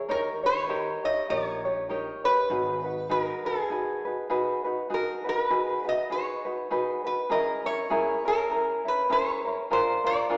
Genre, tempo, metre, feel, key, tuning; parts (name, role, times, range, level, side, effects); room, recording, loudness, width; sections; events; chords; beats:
Hawaiian; 100 BPM; 4/4; swing 58% on 8ths; G# minor; A4 = 440 Hz
tenor ukulele; accompaniment; 0.0-10.4 s; C#4 to C#5; -27 LUFS; equal
metal-body resonator slide guitar; melody; 0.1-10.4 s; G#4 to D#5; -27 LUFS; equal
upright bass; bass; 0.1-3.3 s; G#1 to D#2; -44 LUFS; equal
wet recital hall reverb, RT60 1.6 s; recorded in a church or concert hall, small speaker sound; -24 LUFS; side -33 dB against mid
0.0-4.9 A section; 4.9-10.4 A section
0.1 D#7; 2.5 G#m7; 7.3 C#m6; 9.7 A#7
| 0.10 0.70 1.30 1.90 | 2.50 3.10 3.70 4.30 | 4.90 5.50 6.10 6.70 | 7.30 7.90 8.50 9.10 | 9.70 10.30